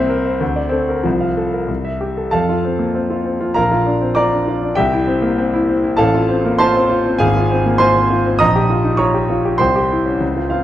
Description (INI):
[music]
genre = classical, virtuoso piano study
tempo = 98 BPM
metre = 2/4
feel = rubato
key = F major, F minor from 7.2 s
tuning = A4 = 440 Hz
[part]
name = clear grand piano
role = solo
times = 0.0-10.6 s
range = Ab1 to Eb6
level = -14 LUFS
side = equal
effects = none
[sound]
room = wet recital hall reverb, RT60 1.5 s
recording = dark, warm production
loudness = -14 LUFS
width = side -12 dB against mid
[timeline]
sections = 0.0-2.3 A section; 2.3-10.6 B section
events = none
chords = 0.4 D5; 1.0 F/C; 1.7 C; 2.3 F; 3.5 Bb; 4.8 C; 6.0 F/A; 7.2 Fm/Ab; 8.4 Gm7b5/Bb; 9.6 C